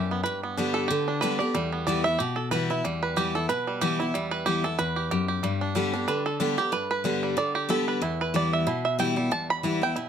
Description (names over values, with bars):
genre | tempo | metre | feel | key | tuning
bluegrass | 185 BPM | 4/4 | swing 55% on 8ths | E minor | A4 = 436 Hz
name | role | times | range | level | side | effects
bluegrass banjo | melody | 0.0-10.1 s | D3 to B5 | -27 LUFS | right 4 dB | none
picked steel-string acoustic guitar | accompaniment | 0.0-10.1 s | E2 to G4 | -27 LUFS | left 2 dB | none
room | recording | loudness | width
light reverb | close, detailed microphones | -24 LUFS | side -8 dB against mid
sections
0.0-2.8 A section; 2.8-10.1 A section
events
five-string banjo solo 0.0-10.1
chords
0.3 G; 1.5 Em; 5.4 G; 8.0 Em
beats
| 0.25 0.58 0.90 1.22 | 1.55 1.87 2.19 2.52 | 2.84 3.17 3.49 3.81 | 4.14 4.46 4.79 5.11 | 5.43 5.76 6.08 6.41 | 6.73 7.05 7.38 7.70 | 8.02 8.35 8.67 8.99 | 9.32 9.64 9.97